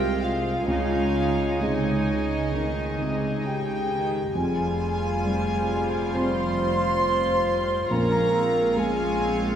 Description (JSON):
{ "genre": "cinematic, emotional film score for orchestra", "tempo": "67 BPM", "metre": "4/4", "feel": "rubato", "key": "F minor", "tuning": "A4 = 440 Hz", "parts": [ { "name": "warm symphonic violin section", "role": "melody", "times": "0.0-9.6 s", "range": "Eb5 to C6", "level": "-35 LUFS", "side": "left 2 dB", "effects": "none" }, { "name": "mellow hollow flute section", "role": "second line", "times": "0.0-9.4 s", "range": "Eb5 to C6", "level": "-32 LUFS", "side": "right 2 dB", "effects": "none" }, { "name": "warm clarinet", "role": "second line", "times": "0.0-9.6 s", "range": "C4 to Db5", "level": "-34 LUFS", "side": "equal", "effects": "none" }, { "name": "warm studio violin section", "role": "second line", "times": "0.0-9.6 s", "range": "C5 to Ab5", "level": "-35 LUFS", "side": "left 1 dB", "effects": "none" }, { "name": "felt-muted upright piano", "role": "accompaniment", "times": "0.0-9.6 s", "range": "Bb1 to F4", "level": "-30 LUFS", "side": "left 2 dB", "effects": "none" }, { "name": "rich symphonic viola section", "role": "accompaniment", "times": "0.0-9.6 s", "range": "G3 to F4", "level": "-32 LUFS", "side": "right 1 dB", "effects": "none" }, { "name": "warm French horn section", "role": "sustained chords", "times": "0.0-9.5 s", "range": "Eb4 to C5", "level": "-27 LUFS", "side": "equal", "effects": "none" }, { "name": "rich symphonic cello section", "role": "bass", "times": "0.0-9.6 s", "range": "F2 to Eb3", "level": "-34 LUFS", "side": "right 2 dB", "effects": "none" }, { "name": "rich symphonic double bass section", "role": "bass", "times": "0.0-9.6 s", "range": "F1 to Db2", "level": "-30 LUFS", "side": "right 3 dB", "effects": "none" } ], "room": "wet scoring stage reverb, RT60 1.7 s", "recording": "heard from further back in the room", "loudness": "-22 LUFS", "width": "side -9 dB against mid", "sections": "0.0-9.6 A section", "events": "none", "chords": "0.0 Fmadd9/C; 0.7 Dbsus2; 4.3 Fmadd9; 7.9 Bbm7", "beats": "| 0.68 1.60 2.53 3.45 | 4.35 5.24 6.14 7.03 | 7.90 8.77" }